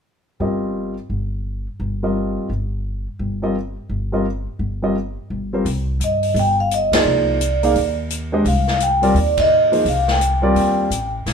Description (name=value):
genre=modal jazz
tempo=171 BPM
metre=4/4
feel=swing 63% on 8ths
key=C minor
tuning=A4 = 441 Hz
part: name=warm grand piano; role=accompaniment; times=0.4-10.9 s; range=F3 to F5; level=-20 LUFS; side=equal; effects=none
part: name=upright bass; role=bass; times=0.4-11.3 s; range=G1 to G2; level=-23 LUFS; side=equal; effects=none
part: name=swinging big-band drum kit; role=drums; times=5.7-11.3 s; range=hi-hat, kick drum, ride cymbal, snare drum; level=-26 LUFS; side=left 2 dB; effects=none
part: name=vibraphone with soft mallets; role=melody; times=6.0-11.1 s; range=D5 to G5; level=-17 LUFS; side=right 1 dB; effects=none
room=moderate studio reverb, RT60 0.9 s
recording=band playing live in one room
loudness=-17 LUFS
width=side -6 dB against mid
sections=0.1-5.7 A section; 5.7-11.3 B section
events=band accent 6.9, 9.3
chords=0.1 Cm7; 5.7 Cm11